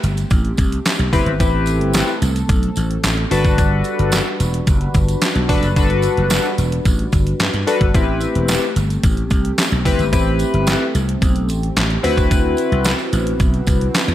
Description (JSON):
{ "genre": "early-eighties boogie funk", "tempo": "110 BPM", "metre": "4/4", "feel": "straight", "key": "G major", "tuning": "A4 = 440 Hz", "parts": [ { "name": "chorused pulse-width pad", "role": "sustained chords", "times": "0.0-14.1 s", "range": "D3 to B4", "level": "-25 LUFS", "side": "right 1 dB", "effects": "none" }, { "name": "slap bass", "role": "bass", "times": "0.0-14.1 s", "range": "E1 to G2", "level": "-19 LUFS", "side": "equal", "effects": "none" }, { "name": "detuned 8-bit digital drum machine", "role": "drums", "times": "0.0-14.1 s", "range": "handclaps, hi-hat, kick drum, snare drum", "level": "-18 LUFS", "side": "equal", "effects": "gated reverb" }, { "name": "tambourine", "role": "percussion", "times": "0.0-14.1 s", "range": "none", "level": "-32 LUFS", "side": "right 6 dB", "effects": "none" }, { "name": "chorused polysynth", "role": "accompaniment", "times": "1.1-12.9 s", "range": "C4 to B4", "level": "-19 LUFS", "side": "left 3 dB", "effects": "none" } ], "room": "little or no reverb", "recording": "none", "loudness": "-14 LUFS", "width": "side -13 dB against mid", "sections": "0.0-14.1 A section", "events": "none", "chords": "0.0 Am7; 3.3 Gmaj7; 7.9 Am7; 12.0 D13", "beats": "0.31 0.85 | 1.40 1.95 2.49 3.04 | 3.58 4.13 4.67 5.22 | 5.76 6.31 6.86 7.40 | 7.95 8.49 9.04 9.58 | 10.13 10.67 11.22 11.76 | 12.31 12.86 13.40 13.95" }